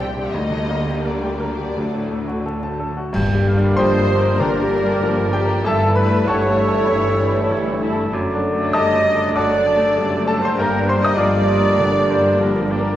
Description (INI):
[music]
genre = classical, romantic movement for piano and orchestra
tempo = 84-101 BPM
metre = 4/4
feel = rubato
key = G minor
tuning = A4 = 440 Hz
[part]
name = clear baby grand piano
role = melody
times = 0.0-13.0 s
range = Bb1 to Eb6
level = -20 LUFS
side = left 1 dB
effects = none
[part]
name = rich studio violin section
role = melody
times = 0.0-13.0 s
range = G4 to G5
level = -33 LUFS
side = left 4 dB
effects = none
[part]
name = rich studio violin section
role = second line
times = 0.0-12.7 s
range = D4 to Eb5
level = -28 LUFS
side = left 1 dB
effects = none
[part]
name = warm studio viola section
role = accompaniment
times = 0.0-13.0 s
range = F#3 to E4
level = -27 LUFS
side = right 1 dB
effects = none
[part]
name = rich studio double bass section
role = bass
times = 0.0-12.9 s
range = F#1 to D2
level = -25 LUFS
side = equal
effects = none
[part]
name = warm studio cello section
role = bass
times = 0.0-12.9 s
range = F#2 to D3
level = -27 LUFS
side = right 1 dB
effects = none
[part]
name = clear trombone section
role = sustained chords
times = 3.1-13.0 s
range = D3 to G3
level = -27 LUFS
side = right 1 dB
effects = none
[part]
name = dark French horn section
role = sustained chords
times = 3.1-13.0 s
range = A3 to A4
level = -26 LUFS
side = left 2 dB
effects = none
[part]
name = clash cymbals and concert bass drum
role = percussion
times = 3.1-4.4 s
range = none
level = -30 LUFS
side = equal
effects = none
[part]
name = warm oboe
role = second line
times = 3.2-13.0 s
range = Bb4 to A5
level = -28 LUFS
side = right 1 dB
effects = none
[part]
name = large flute ensemble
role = second line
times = 3.8-12.7 s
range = G4 to Eb5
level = -26 LUFS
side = right 1 dB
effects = none
[part]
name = clear trumpet section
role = stabs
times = 3.8-12.7 s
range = G4 to Eb5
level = -23 LUFS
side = right 2 dB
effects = none
[sound]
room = wet scoring stage reverb, RT60 2.0 s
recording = worn, warbling old tape, cassette tape, vinyl crackle, warbly pitch drift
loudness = -16 LUFS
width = side -12 dB against mid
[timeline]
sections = 0.0-3.1 A section; 3.1-13.0 B section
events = band accent 3.1-3.8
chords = 0.4 Gm/D; 1.8 D; 3.1 Gm; 5.6 A7/G; 8.1 D/F#; 10.6 Gm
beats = | 0.35 1.06 1.77 2.46 | 3.14 3.78 4.40 5.02 | 5.64 6.27 6.90 7.51 | 8.12 8.73 9.35 9.95 | 10.57 11.16 11.77 12.38